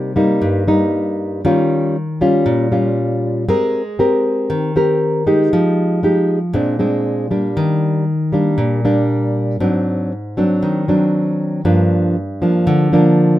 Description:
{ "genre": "bossa nova", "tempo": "118 BPM", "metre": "4/4", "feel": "straight", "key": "unclear", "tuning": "A4 = 440 Hz", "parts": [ { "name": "nylon-string guitar", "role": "solo", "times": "0.0-13.4 s", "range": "G2 to Bb4", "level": "-14 LUFS", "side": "equal", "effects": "none" } ], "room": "light reverb", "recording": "minimal, uncompressed stereo recording", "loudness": "-14 LUFS", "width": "side -14 dB against mid", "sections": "0.0-13.4 A section", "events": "none", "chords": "0.0 Cm7; 1.4 Eb9; 3.5 Abmaj9; 5.5 Fm9; 6.5 Bb9; 7.6 Ebmaj7; 9.6 Ab7#11; 11.6 Gm7", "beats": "0.42 0.93 | 1.44 1.95 2.46 2.97 | 3.48 3.99 4.50 5.01 | 5.53 6.04 6.55 7.06 | 7.57 8.08 8.59 9.10 | 9.61 10.12 10.63 11.14 | 11.65 12.16 12.67 13.18" }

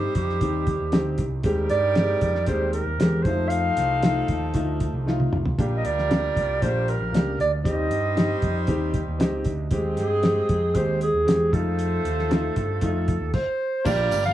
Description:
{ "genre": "uptempo 1960s-style soul", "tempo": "116 BPM", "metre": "4/4", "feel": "straight", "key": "unclear", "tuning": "A4 = 442 Hz", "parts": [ { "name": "breathy clarinet", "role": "melody", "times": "0.0-14.3 s", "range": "G4 to F5", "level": "-25 LUFS", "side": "right 2 dB", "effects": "none" }, { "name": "warm horn section", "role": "second line", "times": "0.0-14.3 s", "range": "F3 to Eb5", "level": "-33 LUFS", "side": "equal", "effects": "none" }, { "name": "warm grand piano", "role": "accompaniment", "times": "0.0-14.1 s", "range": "Ab3 to Eb5", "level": "-28 LUFS", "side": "left 2 dB", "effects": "none" }, { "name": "overdriven picked electric bass", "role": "bass", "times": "0.0-14.3 s", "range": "G1 to G2", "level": "-26 LUFS", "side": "equal", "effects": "none" }, { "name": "cloth-damped thuddy drum kit", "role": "drums", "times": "0.1-14.3 s", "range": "crash cymbal, hi-hat, kick drum, snare drum, toms", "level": "-25 LUFS", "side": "equal", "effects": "none" }, { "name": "tonewheel organ", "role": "sustained chords", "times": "13.9-14.3 s", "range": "Bb3 to G4", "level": "-35 LUFS", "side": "right 3 dB", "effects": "slow rotary speaker, chorus vibrato" }, { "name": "congas", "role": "percussion", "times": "13.9-14.2 s", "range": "none", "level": "-36 LUFS", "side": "equal", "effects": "none" }, { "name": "tambourine", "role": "percussion", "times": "13.9-14.2 s", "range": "none", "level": "-41 LUFS", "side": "right 6 dB", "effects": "none" } ], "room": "light reverb, small room ambience", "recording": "none", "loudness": "-21 LUFS", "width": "side -13 dB against mid", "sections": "0.0-13.9 A section", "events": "drum fill 5.1-5.6; grand piano fill 8.9-9.7", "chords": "0.0 Eb6; 1.4 Abmaj7/Eb; 3.3 F7; 5.6 Bb6; 7.7 Eb6; 9.7 Abmaj7/Eb; 11.5 F7", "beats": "0.41 0.93 | 1.45 1.96 2.48 3.00 | 3.51 4.03 4.55 5.07 | 5.58 6.10 6.62 7.13 | 7.65 8.17 8.69 9.20 | 9.72 10.24 10.76 11.27 | 11.79 12.31 12.82 13.34 | 13.86" }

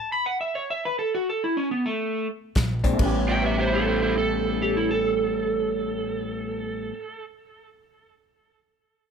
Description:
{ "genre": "electric blues shuffle", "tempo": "138 BPM", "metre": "4/4", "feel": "swing 65% on 8ths", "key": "A mixolydian", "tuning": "A4 = 440 Hz", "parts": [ { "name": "electric slide guitar", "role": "melody", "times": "0.0-7.2 s", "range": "A3 to B5", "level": "-26 LUFS", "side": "right 2 dB", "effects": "none" }, { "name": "electric guitar through a small old amp", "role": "riff", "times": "2.6-7.0 s", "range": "A2 to D4", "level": "-28 LUFS", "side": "left 3 dB", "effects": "warbly pitch drift" }, { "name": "upright bass", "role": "bass", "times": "2.6-6.9 s", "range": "A1 to Bb1", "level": "-31 LUFS", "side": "equal", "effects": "none" }, { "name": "natural country drum kit", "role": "drums", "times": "2.6-3.1 s", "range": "crash cymbal, hi-hat, kick drum, snare drum", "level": "-25 LUFS", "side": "equal", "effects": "none" }, { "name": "warm upright piano", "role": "accompaniment", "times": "2.9-7.9 s", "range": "A2 to B6", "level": "-34 LUFS", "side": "right 4 dB", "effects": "none" }, { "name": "overdriven slide guitar", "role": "second line", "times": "3.3-7.2 s", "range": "E4 to E5", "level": "-29 LUFS", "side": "right 4 dB", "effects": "digital delay" } ], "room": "light reverb", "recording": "none", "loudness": "-22 LUFS", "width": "side -6 dB against mid", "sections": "0.0-3.0 A section; 3.0-6.5 B section", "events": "stop 0.0-2.6", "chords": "0.0 N.C.; 2.6 Bb9; 3.0 A9", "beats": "0.39 0.82 | 1.26 1.69 2.13 2.56 | 3.00 3.43 3.86 4.30 | 4.73 5.17 5.60 6.04" }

